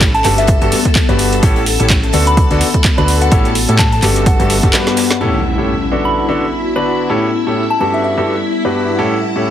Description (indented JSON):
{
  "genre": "piano house",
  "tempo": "127 BPM",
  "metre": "4/4",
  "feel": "swing 57% on 16ths",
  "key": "A mixolydian",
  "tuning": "A4 = 441 Hz",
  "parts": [
    { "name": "string machine, violins", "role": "sustained chords", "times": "0.0-9.5 s", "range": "E4 to A5", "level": "-22 LUFS", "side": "equal", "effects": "ensemble chorus, sidechain pumping" },
    { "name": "clear grand piano", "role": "riff", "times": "0.0-9.5 s", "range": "G2 to B4", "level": "-17 LUFS", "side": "left 1 dB", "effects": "sidechain pumping, digital delay" },
    { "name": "solid FM bass", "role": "bass", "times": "0.0-4.7 s", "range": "G1 to A2", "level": "-16 LUFS", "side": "equal", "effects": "sidechain pumping" },
    { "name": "big rock drum kit", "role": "drums", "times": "0.0-5.1 s", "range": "hi-hat, snare drum", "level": "-29 LUFS", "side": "left 3 dB", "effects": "none" },
    { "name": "electronic kick drum", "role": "drums", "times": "0.0-4.7 s", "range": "none", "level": "-13 LUFS", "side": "equal", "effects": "none" },
    { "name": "garage drum kit", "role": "drums", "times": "0.0-5.2 s", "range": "handclaps, hi-hat, snare drum", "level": "-17 LUFS", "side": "right 1 dB", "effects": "overdrive, low-pass filter on snare, low-pass filter on hats" },
    { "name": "warbly tape-like pad", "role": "texture", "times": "0.0-9.5 s", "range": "G3 to A5", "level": "-22 LUFS", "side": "left 3 dB", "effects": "chorus, built-in reverb, sidechain pumping" },
    { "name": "soft synth bell", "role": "melody", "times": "0.1-8.1 s", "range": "E5 to B5", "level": "-20 LUFS", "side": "left 1 dB", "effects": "chorus, phaser, digital delay" },
    { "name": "impact", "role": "sound effects", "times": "5.2-7.1 s", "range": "none", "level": "-21 LUFS", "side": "equal", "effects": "none" }
  ],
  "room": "light reverb, small room ambience",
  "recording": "heavily compressed radio sound, multiband compression",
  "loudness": "-11 LUFS",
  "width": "side -10 dB against mid",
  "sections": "0.0-5.2 A section; 5.2-9.5 B section",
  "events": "drum fill 4.7-5.2; impact 5.2-7.1",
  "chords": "0.2 Gmaj9; 1.4 A7; 2.4 D6; 3.3 A7; 4.0 Gmaj9; 5.2 A7; 6.2 D6; 7.1 A7; 7.8 Gmaj9; 9.0 A7",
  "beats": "0.01 0.48 0.95 | 1.43 1.90 2.37 2.85 | 3.32 3.79 4.26 4.74 | 5.21 5.68 6.15 6.62 | 7.10 7.57 8.04 8.51 | 8.99 9.46"
}